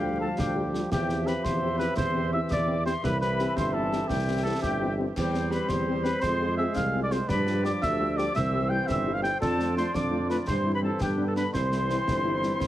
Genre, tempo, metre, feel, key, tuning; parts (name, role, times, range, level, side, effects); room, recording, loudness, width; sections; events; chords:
military-style march for wind band; 113 BPM (dotted quarters); 6/8; straight; C major; A4 = 441 Hz
mellow cornet; melody; 0.0-12.7 s; G4 to G5; -31 LUFS; right 2 dB
mellow piccolo; second line; 0.0-12.7 s; G5 to G6; -34 LUFS; left 3 dB
mellow woodwind section; second line; 0.0-12.7 s; D4 to F5; -35 LUFS; left 2 dB
mellow French horn section; accompaniment; 0.0-12.5 s; G3 to Ab4; -33 LUFS; left 3 dB
warm trombone section; sustained chords; 0.0-12.7 s; D3 to D4; -34 LUFS; equal
mellow tuba; bass; 0.0-12.7 s; G1 to G2; -29 LUFS; right 1 dB
concert snare drum, concert bass drum and clash cymbals; drums; 0.4-12.7 s; -35 LUFS; equal
light reverb; heavily compressed radio sound, multiband compression, vinyl crackle; -24 LUFS; side -13 dB against mid
0.0-12.7 A section
0.0 G7(no3)/D; 0.9 C/E; 3.0 C; 5.2 C/E; 6.2 Fm; 7.3 G7; 8.3 C; 9.4 Dm/F; 10.5 C/G; 11.0 G; 11.5 C